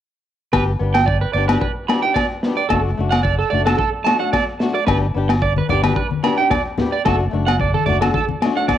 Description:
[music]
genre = highlife guitar band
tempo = 110 BPM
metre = 4/4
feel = swing 54% on 16ths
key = G major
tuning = A4 = 435 Hz
[part]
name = flamenco guitar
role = accompaniment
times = 0.5-8.7 s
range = A3 to G4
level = -24 LUFS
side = left 7 dB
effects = cassette tape
[part]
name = electric guitar at the edge of break-up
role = arpeggios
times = 0.5-8.8 s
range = A4 to B5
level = -20 LUFS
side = right 7 dB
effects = cassette tape, analog delay
[part]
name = fingered electric bass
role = bass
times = 0.5-8.1 s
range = F#1 to G1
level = -20 LUFS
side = equal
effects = none
[part]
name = crunchy breakbeat drum kit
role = drums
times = 0.5-8.8 s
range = kick drum, snare drum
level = -22 LUFS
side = equal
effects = cassette tape
[part]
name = agogo bells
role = percussion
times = 0.5-8.8 s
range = none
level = -25 LUFS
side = left 9 dB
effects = none
[part]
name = congas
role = percussion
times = 5.6-8.8 s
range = none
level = -24 LUFS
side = left 6 dB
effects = none
[sound]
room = light reverb, small room ambience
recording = home recording on cassette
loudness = -16 LUFS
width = side -10 dB against mid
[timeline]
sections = 0.5-8.8 A section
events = none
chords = 0.5 G; 2.7 D/F#; 4.9 G; 7.1 D/F#

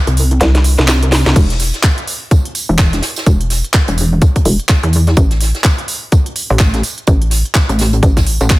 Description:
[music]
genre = bass house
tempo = 126 BPM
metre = 4/4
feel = swing 59% on 16ths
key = unclear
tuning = A4 = 440 Hz
[part]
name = pulsing pluck wobble bass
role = bass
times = 0.1-8.6 s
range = E1 to E2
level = -12 LUFS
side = equal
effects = chorus, sidechain pumping
[part]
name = garage drum kit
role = drums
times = 0.1-8.6 s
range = crash cymbal, handclaps, hi-hat, snare drum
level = -17 LUFS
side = equal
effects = none
[part]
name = natural country drum kit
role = drums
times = 0.1-8.6 s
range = hi-hat, snare drum, tambourine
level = -26 LUFS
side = right 2 dB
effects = high-pass filter on hats, high-pass filter on snare, high-pass filter on perc, high-pass filter on room
[part]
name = hollow knocking FM bass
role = bass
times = 0.4-8.4 s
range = E1 to C2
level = -13 LUFS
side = equal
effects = tube saturation, sidechain pumping
[part]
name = electronic kick drum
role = drums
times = 1.4-8.6 s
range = none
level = -12 LUFS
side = equal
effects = none
[sound]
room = little or no reverb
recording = none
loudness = -10 LUFS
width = side -19 dB against mid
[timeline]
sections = 0.0-8.6 A section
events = kick drops out 0.4-1.4; drum fill 0.4-1.4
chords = none

